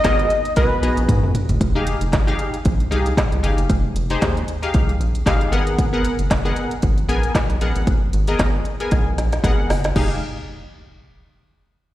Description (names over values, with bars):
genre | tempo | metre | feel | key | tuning
early-eighties boogie funk | 115 BPM | 4/4 | swing 56% on 16ths | unclear | A4 = 438 Hz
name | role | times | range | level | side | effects
fat analog lead | melody | 0.0-1.3 s | Cb5 to Eb5 | -21 LUFS | equal | slapback echo, tape echo
funky polysynth comp | accompaniment | 0.0-10.2 s | Cb4 to Bb5 | -24 LUFS | left 2 dB | chorus, slapback echo
rubbery square bass | bass | 0.0-10.2 s | F1 to Ab2 | -20 LUFS | equal | none
organic electronic drum kit | drums | 0.0-10.1 s | crash cymbal, handclaps, hi-hat, kick drum, snare drum, toms | -20 LUFS | equal | none
room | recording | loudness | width
little or no reverb | live gig heard through the venue's PA, recital hall reverb | -17 LUFS | side -15 dB against mid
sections
0.0-1.6 A section; 1.6-10.0 B section; 10.0-11.9 C section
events
drum fill 1.1-1.6, 8.9-10.0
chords
0.0 Abm9; 1.6 Fm9; 5.5 Abm9; 10.0 Fm9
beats
0.05 0.57 1.09 | 1.61 2.13 2.65 3.18 | 3.70 4.22 4.74 5.26 | 5.79 6.31 6.83 7.35 | 7.87 8.39 8.92 9.44 | 9.96